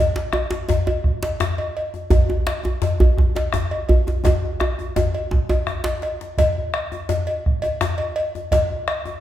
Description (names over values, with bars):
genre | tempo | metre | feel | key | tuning
west african traditional, West African drum ensemble | 112 BPM (dotted quarters) | 12/8 | straight | none | none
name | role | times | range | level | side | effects
djembe | percussion | 0.2-9.2 s | none | -26 LUFS | left 4 dB | none
djembe | percussion | 0.2-6.0 s | none | -20 LUFS | right 1 dB | none
bombo | percussion | 0.3-9.2 s | none | -24 LUFS | right 1 dB | none
cowbell | percussion | 0.3-9.0 s | none | -25 LUFS | equal | none
room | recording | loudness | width
wet large studio reverb, RT60 1.3 s | band playing live in one room | -19 LUFS | side -12 dB against mid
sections
0.0-6.4 A section; 6.4-9.2 B section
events
drum fill 4.2-6.4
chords
none